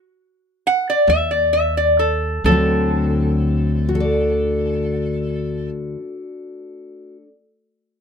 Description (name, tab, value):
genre	acoustic country blues, solo or duo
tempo	42-50 BPM (dotted quarters)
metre	12/8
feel	straight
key	D mixolydian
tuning	A4 = 440 Hz
part	lap resonator guitar	melody	0.7-5.7 s	A4 to F#5	-18 LUFS	equal	none
part	fingerpicked steel-string acoustic guitar	accompaniment	1.1-7.3 s	D2 to D5	-20 LUFS	left 2 dB	none
part	upright bass	bass	1.1-5.7 s	D2 to Eb2	-23 LUFS	right 1 dB	none
room	little or no reverb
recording	close, detailed microphones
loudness	-16 LUFS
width	side -6 dB against mid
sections	0.0-2.4 A section; 2.4-8.0 B section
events	slowing down 0.0-2.4; stop 0.0-1.1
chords	0.0 N.C.; 1.1 Asus4; 2.4 D7